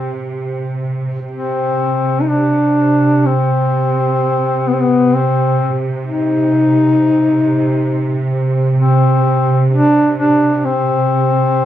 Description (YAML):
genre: caucasian folk, Caucasian lament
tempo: free time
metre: none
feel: none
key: C harmonic minor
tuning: A4 = 442 Hz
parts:
  - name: mellow duduk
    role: melody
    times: 0.0-11.7 s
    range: B3 to Eb4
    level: -14 LUFS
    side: left 2 dB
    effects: cassette tape
  - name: rich studio string section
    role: drone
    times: 0.0-11.7 s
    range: C3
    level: -16 LUFS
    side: right 2 dB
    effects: none
room: moderate booth ambience, RT60 0.2 s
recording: home recording on cassette, small room ambience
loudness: -12 LUFS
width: side -11 dB against mid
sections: 0.0-11.7 A section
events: none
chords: none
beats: free time